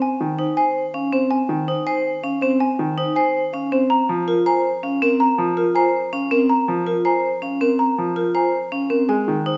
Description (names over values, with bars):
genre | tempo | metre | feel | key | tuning
classical, minimalist pattern music | 324 BPM (eighths) | 7/8 | straight | unclear | A4 = 440 Hz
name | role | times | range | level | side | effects
marimba with soft mallets | melody | 0.0-9.6 s | Bb4 to Ab5 | -26 LUFS | equal | none
vibraphone with hard mallets | arpeggios | 0.0-9.6 s | C4 to C5 | -23 LUFS | equal | none
xylophone with soft rubber mallets | arpeggios | 0.0-9.3 s | Ab5 to Bb5 | -27 LUFS | equal | none
clear grand piano | accompaniment | 0.2-9.5 s | Eb3 to Ab3 | -28 LUFS | equal | none
room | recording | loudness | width
moderate recital hall reverb, RT60 1.7 s | nothing above 7.8 kHz | -20 LUFS | mono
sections
0.0-9.6 A section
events
none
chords
0.0 Dbmaj7(no3); 3.9 Bbm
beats
| 0.01 0.20 0.38 0.57 0.75 0.94 1.12 | 1.31 1.50 1.68 1.86 2.05 2.23 2.42 | 2.61 2.79 2.98 3.16 3.35 3.53 3.72 | 3.90 4.09 4.27 4.46 4.64 4.83 5.01 | 5.20 5.38 5.57 5.75 5.94 6.12 6.31 | 6.50 6.68 6.87 7.05 7.24 7.42 7.61 | 7.79 7.98 8.16 8.35 8.53 8.72 8.90 | 9.09 9.27 9.46